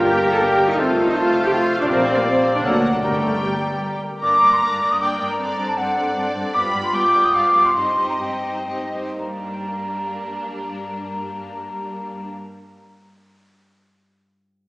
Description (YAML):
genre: classical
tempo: 114-165 BPM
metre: 3/4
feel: rubato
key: G minor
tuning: A4 = 440 Hz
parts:
  - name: rich symphonic violin section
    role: melody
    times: 0.0-12.3 s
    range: D4 to B5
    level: -31 LUFS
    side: equal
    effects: none
  - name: clear oboe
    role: second line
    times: 0.0-4.0 s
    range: Bb4 to D5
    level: -26 LUFS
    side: equal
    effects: none
  - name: concert flute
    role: second line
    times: 0.0-12.3 s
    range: F5 to Eb6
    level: -21 LUFS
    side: equal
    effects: none
  - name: rich studio violin section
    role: second line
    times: 0.0-12.3 s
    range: Bb3 to A5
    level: -30 LUFS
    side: equal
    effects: none
  - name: clear symphonic viola section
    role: accompaniment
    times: 0.0-12.3 s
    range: G3 to A4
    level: -24 LUFS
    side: equal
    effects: none
  - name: mellow bassoon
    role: accompaniment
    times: 0.0-4.0 s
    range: F#3 to Bb3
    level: -25 LUFS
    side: equal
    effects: none
  - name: concert harp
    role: arpeggios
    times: 0.0-13.1 s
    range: F2 to D6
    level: -32 LUFS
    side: left 1 dB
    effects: none
  - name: rich studio double bass section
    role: bass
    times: 0.0-4.0 s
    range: F1 to D2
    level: -30 LUFS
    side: equal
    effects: none
  - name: rich symphonic cello section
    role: bass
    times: 0.0-12.3 s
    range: G2 to A4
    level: -28 LUFS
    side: equal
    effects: none
  - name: timpani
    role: percussion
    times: 0.0-0.2, 3.0-3.6 s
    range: G2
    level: -37 LUFS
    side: equal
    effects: none
  - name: mellow French horn section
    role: sustained chords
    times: 0.8-3.2 s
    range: F3 to D4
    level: -29 LUFS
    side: equal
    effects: none
  - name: dark trumpet section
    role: stabs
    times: 0.8-3.2 s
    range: A4 to Bb4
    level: -32 LUFS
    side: equal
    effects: none
room: wet scoring stage reverb, RT60 1.7 s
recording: heard from further back in the room, small speaker sound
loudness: -17 LUFS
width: side -22 dB against mid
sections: 0.0-4.2 A section; 4.2-9.2 B section; 9.2-12.2 C section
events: slowing down 6.0-9.2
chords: 0.0 Gm; 0.8 F; 1.9 Bb; 2.6 D; 3.0 Gm; 5.4 D7/G; 6.5 G7; 7.8 Cm/G; 9.2 Gm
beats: 0.03 0.41 | 0.79 1.16 1.53 | 1.89 2.26 2.64 | 3.03 3.43 3.83 | 4.22 4.62 5.01 | 5.39 5.78 6.16 | 6.55 6.93 7.34 | 7.76 8.20 8.67 | 9.19 9.68 10.18 | 10.67 11.16 11.66